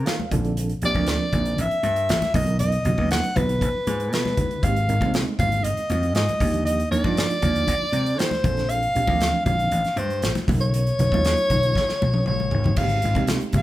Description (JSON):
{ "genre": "electric jazz fusion", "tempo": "118 BPM", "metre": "4/4", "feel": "straight", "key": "unclear", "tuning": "A4 = 440 Hz", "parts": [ { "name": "breathy soprano saxophone", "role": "melody", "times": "0.0-13.6 s", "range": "Bb4 to F#5", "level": "-24 LUFS", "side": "equal", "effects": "none" }, { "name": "vintage slap bass", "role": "bass", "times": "0.0-13.6 s", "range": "G1 to Eb3", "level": "-24 LUFS", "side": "equal", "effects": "none" }, { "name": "mellow reed electric piano", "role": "accompaniment", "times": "0.1-13.6 s", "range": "Fb3 to F5", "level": "-28 LUFS", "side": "right 3 dB", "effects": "fast tremolo" }, { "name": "modern studio drum kit", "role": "drums", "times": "0.1-13.6 s", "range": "crash cymbal, hi-hat, kick drum, snare drum, toms", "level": "-27 LUFS", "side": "equal", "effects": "none" }, { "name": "congas", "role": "percussion", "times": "0.2-13.6 s", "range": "none", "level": "-28 LUFS", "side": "left 1 dB", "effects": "none" } ], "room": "moderate large studio reverb, RT60 1.1 s", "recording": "band playing live in one room", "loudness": "-19 LUFS", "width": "side -15 dB against mid", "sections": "0.0-12.8 A section", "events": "reed electric piano fill 0.0-0.6; drum fill 11.8-12.8", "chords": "0.3 Bbmaj9; 2.3 Bmaj9; 4.6 Abmaj9; 6.4 Ebmaj9; 8.4 Bbmaj9; 10.5 Bmaj9; 12.8 Abmaj9" }